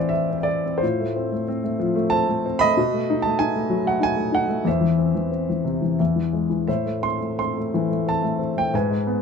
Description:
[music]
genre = classical, lyrical solo piano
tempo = 84-98 BPM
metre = 3/4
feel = rubato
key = A minor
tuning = A4 = 441 Hz
[part]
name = warm grand piano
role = solo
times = 0.0-9.2 s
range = E2 to C6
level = -20 LUFS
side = left 1 dB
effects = none
[sound]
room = light reverb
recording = close, detailed microphones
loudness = -20 LUFS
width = side -6 dB against mid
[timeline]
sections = 0.0-9.2 A section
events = grand piano fill 5.7-6.7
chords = 0.0 Am; 0.8 F/A; 2.8 B7; 4.7 C/E; 6.0 E; 6.7 Am

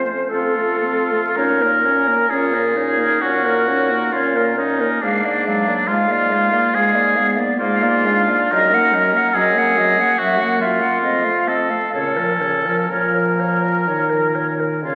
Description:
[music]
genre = classical, slow romantic movement for wind quintet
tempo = 53-73 BPM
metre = 4/4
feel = rubato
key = Bb minor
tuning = A4 = 440 Hz
[part]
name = silver concert flute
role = melody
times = 0.0-14.9 s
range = A4 to Gb5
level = -24 LUFS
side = equal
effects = none
[part]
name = bright clarinet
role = accompaniment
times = 0.0-14.9 s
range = Gb3 to F4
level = -30 LUFS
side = equal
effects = none
[part]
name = mellow French horn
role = accompaniment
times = 0.0-14.9 s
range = Db3 to Db4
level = -27 LUFS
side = equal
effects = none
[part]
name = mellow bassoon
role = bass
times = 0.0-14.9 s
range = F2 to Bb2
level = -27 LUFS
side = equal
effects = none
[part]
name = warm oboe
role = second line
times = 0.3-14.9 s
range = D4 to Bb4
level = -20 LUFS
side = equal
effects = none
[sound]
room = wet scoring stage reverb, RT60 1.7 s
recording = very old 78 rpm record, vinyl crackle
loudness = -17 LUFS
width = mono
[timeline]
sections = 0.0-14.9 A section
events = none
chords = 0.0 F; 1.4 Bbm; 5.0 Bb7/Ab; 8.5 Ebm/Gb; 10.2 Gb7; 11.0 F7; 11.9 Bbm

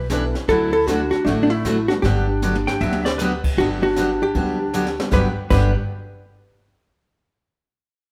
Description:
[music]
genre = country, western swing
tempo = 155 BPM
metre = 4/4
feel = swing 64% on 8ths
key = G major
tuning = A4 = 443 Hz
[part]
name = vintage hollow-body jazz guitar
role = melody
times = 0.0-5.7 s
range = D4 to B4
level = -24 LUFS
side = equal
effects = none
[part]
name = growling clarinet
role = second line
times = 0.0-5.7 s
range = A3 to G4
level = -30 LUFS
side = equal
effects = none
[part]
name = upright bass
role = bass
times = 0.0-5.7 s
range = G1 to D2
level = -26 LUFS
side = equal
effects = none
[part]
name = dark upright piano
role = accompaniment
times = 0.1-2.0, 4.4-5.7 s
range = G3 to A4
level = -32 LUFS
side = equal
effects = none
[part]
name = picked steel-string acoustic guitar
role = accompaniment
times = 0.1-5.7 s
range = G2 to B4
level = -27 LUFS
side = equal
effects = none
[part]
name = jazz brush drum kit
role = drums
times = 0.1-5.6 s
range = brushed snare drum, crash cymbal, hi-hat, kick drum, snare drum, toms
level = -28 LUFS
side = equal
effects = none
[part]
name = clean lap steel guitar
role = second line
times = 2.7-3.5 s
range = B4 to G5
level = -29 LUFS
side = equal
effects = none
[sound]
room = moderate large studio reverb, RT60 1.2 s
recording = band playing live in one room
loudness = -20 LUFS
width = mono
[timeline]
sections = 0.0-3.6 A section; 3.6-5.1 B section; 5.1-6.7 C section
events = drum fill 2.4-3.2, 4.7-5.1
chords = 0.5 Dadd9; 2.0 Gmaj7

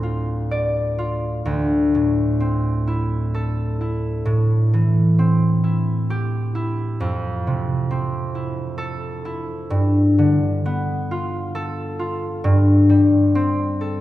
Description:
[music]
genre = classical, solo harp piece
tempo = 66 BPM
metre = 3/4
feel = uneven beats, rubato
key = unclear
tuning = A4 = 441 Hz
[part]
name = concert harp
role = solo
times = 0.0-14.0 s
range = D2 to D5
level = -18 LUFS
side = equal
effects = none
[sound]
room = wet church reverb, RT60 2.6 s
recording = heard from further back in the room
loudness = -18 LUFS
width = side -14 dB against mid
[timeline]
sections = 0.0-14.0 A section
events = none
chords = 0.0 Dm7; 1.5 C69/D; 4.3 Am7; 7.0 Fmaj7; 9.7 G9; 12.5 Am9/G

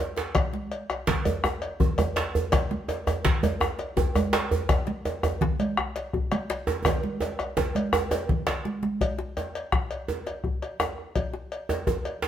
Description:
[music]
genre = west african traditional, West African drum ensemble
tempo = 111 BPM (dotted quarters)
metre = 12/8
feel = straight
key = none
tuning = none
[part]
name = djembe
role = percussion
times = 0.2-12.2 s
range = none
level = -31 LUFS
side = left 3 dB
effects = none
[part]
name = djembe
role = percussion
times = 0.2-12.3 s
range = none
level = -27 LUFS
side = right 3 dB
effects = none
[part]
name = congas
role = percussion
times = 0.3-9.0 s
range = none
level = -30 LUFS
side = right 3 dB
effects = none
[part]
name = cowbell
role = percussion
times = 0.3-12.2 s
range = none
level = -34 LUFS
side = left 3 dB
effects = none
[part]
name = bombo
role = percussion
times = 0.4-12.0 s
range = none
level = -29 LUFS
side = left 2 dB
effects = none
[sound]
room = moderate stone room reverb, RT60 1.0 s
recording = band playing live in one room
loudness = -24 LUFS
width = side -10 dB against mid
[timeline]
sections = 0.0-9.0 A section; 9.0-12.3 A section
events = drum fill 0.0-0.3, 6.9-9.0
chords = none

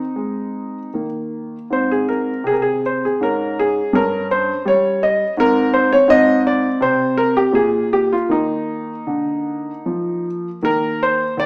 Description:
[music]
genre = classical, baroque-style suite movement for grand piano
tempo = 77-84 BPM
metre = 3/4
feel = rubato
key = Ab major, Eb major from 6.1 s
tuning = A4 = 438 Hz
[part]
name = warm concert grand piano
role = solo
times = 0.0-11.5 s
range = Eb2 to Eb5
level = -18 LUFS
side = equal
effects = none
[sound]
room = wet stone room reverb, RT60 1.1 s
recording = heard from further back in the room, small speaker sound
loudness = -18 LUFS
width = mono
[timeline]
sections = 0.0-10.6 A section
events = none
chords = 0.0 Ab; 0.9 Eb5; 1.7 Ab; 3.2 Bbm7/Ab; 3.9 Gdim; 5.4 Ab; 7.5 N.C.; 8.3 Eb5

